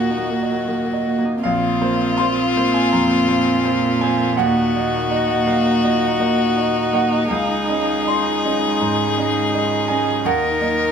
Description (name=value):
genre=neoclassical piano and strings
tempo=82 BPM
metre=4/4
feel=rubato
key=Bb minor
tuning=A4 = 439 Hz
part: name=rich violin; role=melody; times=0.0-10.9 s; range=F4 to Bb4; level=-21 LUFS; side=left 6 dB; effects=none
part: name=rich cello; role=second line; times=0.0-10.9 s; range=Bb2 to Eb3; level=-24 LUFS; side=right 3 dB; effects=none
part: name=bright grand piano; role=accompaniment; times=0.0-10.9 s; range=Bb1 to C6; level=-21 LUFS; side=right 2 dB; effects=none
part: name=rich viola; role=accompaniment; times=0.0-10.9 s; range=Eb3 to Eb4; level=-24 LUFS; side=right 2 dB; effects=none
part: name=warm chamber string section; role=sustained chords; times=0.0-10.9 s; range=Ab3 to Eb5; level=-31 LUFS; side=equal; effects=none
room=moderate stone room reverb, RT60 0.9 s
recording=band playing live in one room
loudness=-16 LUFS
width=side -7 dB against mid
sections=0.0-1.4 A section; 1.4-10.9 B section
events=none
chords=0.0 Ebm; 1.4 Bbsus2; 4.4 Ebm; 7.3 Dbadd9; 10.2 Ebm